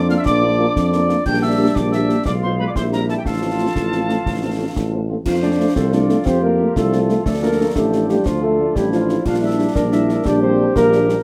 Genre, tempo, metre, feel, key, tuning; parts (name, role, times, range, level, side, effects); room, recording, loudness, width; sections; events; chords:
military-style march for wind band; 120 BPM (dotted quarters); 6/8; straight; F major; A4 = 440 Hz
dark woodwind section; second line; 0.0-11.2 s; D4 to F5; -28 LUFS; equal
piccolo; second line; 0.0-5.1 s; G5 to G6; -29 LUFS; equal
bright trombone section; sustained chords; 0.0-11.2 s; F3 to F4; -26 LUFS; equal
warm tuba; bass; 0.0-11.2 s; A1 to F2; -22 LUFS; equal
dark trumpet section; melody; 0.1-11.2 s; F4 to G5; -30 LUFS; equal
dark French horn section; accompaniment; 0.1-11.2 s; G3 to G4; -27 LUFS; equal
concert snare drum, concert bass drum and clash cymbals; drums; 0.1-11.2 s; -28 LUFS; equal
warm euphonium; second line; 5.3-11.2 s; F3 to F4; -21 LUFS; equal
moderate studio ambience, RT60 0.4 s; -18 LUFS; mono
0.0-5.3 A section; 5.3-11.2 A section
0.0 Bb; 1.3 Gm/Bb; 2.3 Bdim7; 2.8 C7/Bb; 3.3 F/A; 5.3 F; 7.3 Dm; 9.3 Gm/Bb